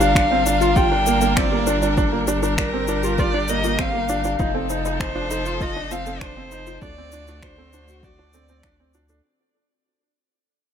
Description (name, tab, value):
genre	piano and strings electronica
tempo	99 BPM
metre	4/4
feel	straight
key	G minor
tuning	A4 = 440 Hz
part	dark violin	melody	0.0-8.9 s	Bb4 to G5	-24 LUFS	left 1 dB	digital delay
part	warm string quartet	sustained chords	0.0-9.2 s	D3 to Bb4	-28 LUFS	left 1 dB	none
part	soft round pluck	arpeggios	0.0-9.2 s	F4 to Eb5	-30 LUFS	left 4 dB	chorus, sidechain pumping, digital delay
part	felt-muted upright piano	riff	0.0-9.2 s	Bb3 to F#4	-24 LUFS	right 3 dB	digital delay
part	round analog bass	bass	0.0-9.2 s	F1 to D2	-28 LUFS	equal	sidechain pumping
part	electronic shaker and finger snaps	drums	0.0-9.2 s	none	-29 LUFS	left 2 dB	none
part	electronic kick drum	drums	0.2-8.8 s	none	-24 LUFS	equal	none
room	light reverb, digital ambience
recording	none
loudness	-18 LUFS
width	side -8 dB against mid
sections	0.0-9.2 A section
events	drop 0.0-9.2; fade-out 0.0-9.2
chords	0.0 Gm7; 4.4 F7; 6.8 D7